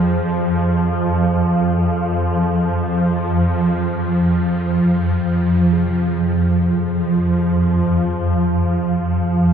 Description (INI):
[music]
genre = dark ambient drone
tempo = free time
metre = none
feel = none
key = unclear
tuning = A4 = 440 Hz
[part]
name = gamelan-type bossed gongs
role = arpeggios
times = 0.0-9.5 s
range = none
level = barely audible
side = none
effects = none
[part]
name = swarming drone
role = drone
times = 0.0-9.5 s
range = F2 to F3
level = -15 LUFS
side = right 1 dB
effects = built-in reverb
[part]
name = bronze singing bowl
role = texture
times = 0.0-9.5 s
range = Ab4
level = -35 LUFS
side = left 4 dB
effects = none
[sound]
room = wet cathedral reverb, RT60 5.1 s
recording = in a vast, echoing space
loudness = -15 LUFS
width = side -8 dB against mid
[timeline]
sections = 0.0-5.7 A section; 5.7-9.5 B section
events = none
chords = 0.0 Fm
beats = free time